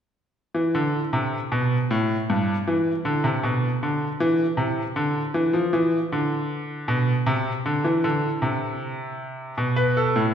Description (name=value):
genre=classical, baroque-style 3-part fugue for grand piano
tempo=52 BPM (dotted quarters)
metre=12/8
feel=straight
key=unclear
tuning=A4 = 440 Hz
part: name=bright grand piano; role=solo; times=0.5-10.3 s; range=G2 to B4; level=-21 LUFS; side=equal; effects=none
room=wet scoring stage reverb, RT60 2.0 s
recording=recorded in a church or concert hall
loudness=-21 LUFS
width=side -8 dB against mid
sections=0.4-10.3 A section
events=none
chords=none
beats=| 0.36 1.52 2.67 3.82 | 4.97 6.12 7.28 8.43 | 9.58